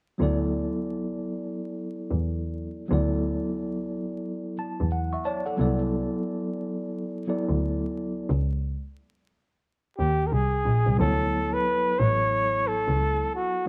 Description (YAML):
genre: hip hop, jazz-hop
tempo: 89 BPM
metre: 4/4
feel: swing 62% on 16ths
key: D major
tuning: A4 = 437 Hz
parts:
  - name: mellow tine electric piano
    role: accompaniment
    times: 0.2-13.7 s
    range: F#3 to C#6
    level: -31 LUFS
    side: equal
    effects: none
  - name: warm double bass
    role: bass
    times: 0.2-13.0 s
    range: A1 to E2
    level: -28 LUFS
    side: equal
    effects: none
  - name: breathy flugelhorn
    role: melody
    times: 10.0-13.7 s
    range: F#4 to C#5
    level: -27 LUFS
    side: equal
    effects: none
room: moderate echo chamber reverb, RT60 1.6 s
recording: vinyl crackle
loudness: -27 LUFS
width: mono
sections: 0.2-11.0 A section; 11.0-13.7 B section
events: tine electric piano fill 4.2-5.6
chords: 0.2 Dadd9; 5.6 Cmaj9; 8.3 C#sus2; 11.0 Dmaj9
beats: | 0.20 0.87 1.55 2.22 | 2.90 3.57 4.25 4.92 | 5.59 6.27 6.94 7.62 | 8.29 8.96 9.64 10.31 | 10.99 11.66 12.34 13.01 | 13.68